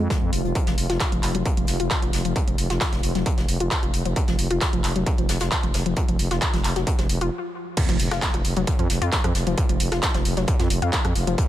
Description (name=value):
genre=driving peak-time techno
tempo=133 BPM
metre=4/4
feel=straight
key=unclear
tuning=A4 = 440 Hz
part: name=warbly dusty pluck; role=riff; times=0.0-11.4 s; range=F3 to F4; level=-28 LUFS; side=left 1 dB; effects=chorus, vintage 12-bit sampler grit, sidechain pumping, tape echo
part: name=growling FM bass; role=bass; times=0.0-11.4 s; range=F1 to F2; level=-25 LUFS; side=equal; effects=sidechain pumping
part: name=deep dark ambient pad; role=drone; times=0.0-11.5 s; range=F3 to F4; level=-34 LUFS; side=equal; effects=chorus, built-in reverb, sidechain pumping
part: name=electronic kick drum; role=drums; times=0.1-11.5 s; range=none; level=-23 LUFS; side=equal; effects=distortion, overdrive
part: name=soft brush drum kit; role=drums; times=0.1-11.5 s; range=hi-hat, snare drum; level=-35 LUFS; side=left 2 dB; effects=high-pass filter on hats, high-pass filter on snare, high-pass filter on room
part: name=techno drum kit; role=drums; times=0.3-11.5 s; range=crash cymbal, handclaps, hi-hat, rim click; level=-28 LUFS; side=right 1 dB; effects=overdrive
part: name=impact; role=sound effects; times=7.8-9.6 s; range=none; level=-34 LUFS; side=equal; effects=none
room=digital ambience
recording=none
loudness=-20 LUFS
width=side -13 dB against mid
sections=0.0-7.8 A section; 7.8-11.5 B section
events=filter sweep on synth arpeggio sound 0.0-7.8; stop 7.3-7.8; drop 7.8-11.5; impact 7.8-9.6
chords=none